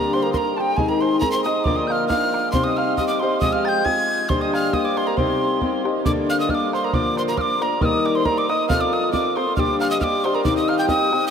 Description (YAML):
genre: celtic folk, Celtic polka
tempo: 136 BPM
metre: 2/4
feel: swing 54% on 8ths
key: C minor, G minor from 6.1 s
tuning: A4 = 444 Hz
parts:
  - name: breathy tin whistle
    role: melody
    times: 0.0-11.3 s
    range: G5 to A6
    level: -23 LUFS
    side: equal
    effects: analog delay
  - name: concert harp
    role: second line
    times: 0.0-11.3 s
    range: G4 to Ab5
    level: -24 LUFS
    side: right 6 dB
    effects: none
  - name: fingerpicked steel-string acoustic guitar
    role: accompaniment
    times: 0.0-11.3 s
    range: G2 to Bb4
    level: -22 LUFS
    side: left 4 dB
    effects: none
  - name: bodhran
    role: percussion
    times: 0.1-11.2 s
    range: none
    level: -27 LUFS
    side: right 2 dB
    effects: none
room: wet huge ambient reverb, RT60 7.7 s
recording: dreamy mix soaked in reverb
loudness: -18 LUFS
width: side -7 dB against mid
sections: 0.0-6.1 A section; 6.1-11.3 B section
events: none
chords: 0.0 Gm; 0.8 Ab; 1.7 Bb; 2.5 Cm; 3.4 Fmadd9; 4.3 Gm; 5.2 Cm; 6.1 Gmadd9; 6.9 Bb; 7.8 Eb; 8.7 F; 9.6 Gm; 10.5 Cm/G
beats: 0.34 | 0.78 1.22 | 1.66 2.10 | 2.54 2.98 | 3.42 3.86 | 4.30 4.74 | 5.18 5.62 | 6.06 6.50 | 6.93 7.38 | 7.82 8.26 | 8.70 9.13 | 9.57 10.02 | 10.46 10.90